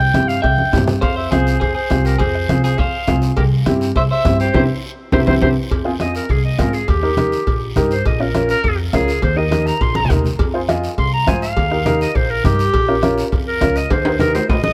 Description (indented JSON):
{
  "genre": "latin, cumbia",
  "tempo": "205 BPM",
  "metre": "4/4",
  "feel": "straight",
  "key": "unclear",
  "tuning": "A4 = 440 Hz",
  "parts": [
    { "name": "clear clarinet", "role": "melody", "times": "0.0-14.7 s", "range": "G4 to C6", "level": "-23 LUFS", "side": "equal", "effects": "none" },
    { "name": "upright bass", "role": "bass", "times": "0.0-14.7 s", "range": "Bb1 to Ab2", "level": "-22 LUFS", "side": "equal", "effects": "none" },
    { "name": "bombo", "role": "percussion", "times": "0.0-14.6 s", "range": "none", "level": "-24 LUFS", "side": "equal", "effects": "none" },
    { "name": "warm upright piano", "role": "accompaniment", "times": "0.1-14.4 s", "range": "C4 to Eb5", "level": "-23 LUFS", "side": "equal", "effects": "none" },
    { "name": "congas", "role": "percussion", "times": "0.1-14.7 s", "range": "none", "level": "-26 LUFS", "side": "equal", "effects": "none" },
    { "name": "cowbell and timbales", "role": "percussion", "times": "0.1-14.6 s", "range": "none", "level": "-29 LUFS", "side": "equal", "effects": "none" },
    { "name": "guiro", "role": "percussion", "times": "0.1-14.7 s", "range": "none", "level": "-37 LUFS", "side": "equal", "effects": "none" },
    { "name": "semi-hollow electric guitar", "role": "second line", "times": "0.4-5.5 s", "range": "G4 to E5", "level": "-29 LUFS", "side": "equal", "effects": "none" }
  ],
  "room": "light reverb",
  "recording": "none",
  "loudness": "-17 LUFS",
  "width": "mono",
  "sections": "0.0-5.7 A section; 5.7-14.7 B section",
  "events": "drum fill 0.6-1.0, 4.5-5.7, 10.0-10.4, 13.9-14.7; band accent 4.5-5.7; clarinet solo 5.7-14.7",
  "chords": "0.0 C; 1.0 Fm; 3.4 C; 5.7 Fm; 6.9 Eb; 8.1 Bbm; 9.2 Eb; 10.4 Fm; 11.6 Eb; 12.7 Bbm; 13.9 Eb",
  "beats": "0.14 0.44 0.73 | 1.03 1.32 1.61 1.91 | 2.20 2.49 2.79 3.08 | 3.37 3.67 3.96 4.25 | 4.54 4.84 5.13 5.42 | 5.71 6.01 6.30 6.59 | 6.88 7.18 7.47 7.76 | 8.06 8.35 8.64 8.93 | 9.23 9.52 9.81 10.10 | 10.40 10.69 10.98 11.28 | 11.57 11.86 12.15 12.45 | 12.74 13.03 13.32 13.62 | 13.91 14.20 14.50"
}